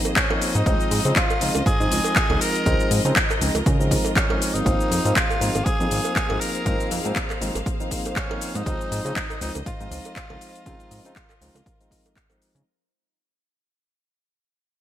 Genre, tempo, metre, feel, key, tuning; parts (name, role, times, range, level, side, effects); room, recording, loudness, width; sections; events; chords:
nu-disco, nu disco; 120 BPM; 4/4; swing 55% on 16ths; A4 = 443 Hz
barky tine electric piano; accompaniment; 0.0-12.6 s; F3 to Eb4; -28 LUFS; equal; sidechain pumping, ping-pong delay
rich studio string section; sustained chords; 0.0-12.6 s; Bb3 to F5; -33 LUFS; equal; sidechain pumping
house drum kit; drums; 0.1-12.6 s; handclaps, hi-hat, shaker; -25 LUFS; left 1 dB; gated reverb
cowbell; percussion; 0.1-12.4 s; -33 LUFS; right 4 dB
growling tenor saxophone; melody; 0.2-12.1 s; Db4 to Bb4; -29 LUFS; equal; ping-pong delay
electronic kick drum; drums; 0.2-12.3 s; -25 LUFS; equal
chorused synth bass; bass; 0.6-12.6 s; Ab1 to Db3; -25 LUFS; equal
light reverb, small room ambience; bright 1980s-style digital production; -19 LUFS; side -11 dB against mid
0.0-12.7 A section
drop 0.0-12.7; fade-out 4.7-12.7
0.0 Ab69; 0.7 Dbmaj9; 4.7 Ab69; 8.7 Dbmaj9